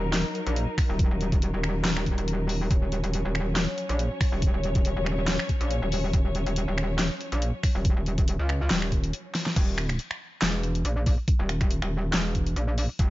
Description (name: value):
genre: heavy wobble dubstep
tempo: 140 BPM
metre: 4/4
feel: swing 54% on 16ths, half-time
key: Eb phrygian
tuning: A4 = 440 Hz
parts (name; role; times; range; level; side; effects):
- dark symphonic string section; sustained chords; 0.0-9.5 s; Gb3 to Db5; -34 LUFS; left 2 dB; sidechain pumping, low-pass filter
- metallic wobble bass; bass; 0.0-13.1 s; Eb1 to Db2; -26 LUFS; equal; chorus, overdrive
- dubstep drum kit; drums; 0.1-13.1 s; crash cymbal, finger snaps, handclaps, hi-hat, snare drum; -30 LUFS; left 1 dB; none
- electronic kick drum; drums; 0.8-13.1 s; none; -23 LUFS; equal; overdrive
room: little or no reverb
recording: dark, warm production, nothing above 7.6 kHz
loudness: -24 LUFS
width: side -16 dB against mid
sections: 0.0-9.6 A section; 9.6-13.1 A section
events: drop 0.0-9.6, 9.6-13.1; drum fill 9.3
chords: 0.0 Ebm; 9.6 Eb5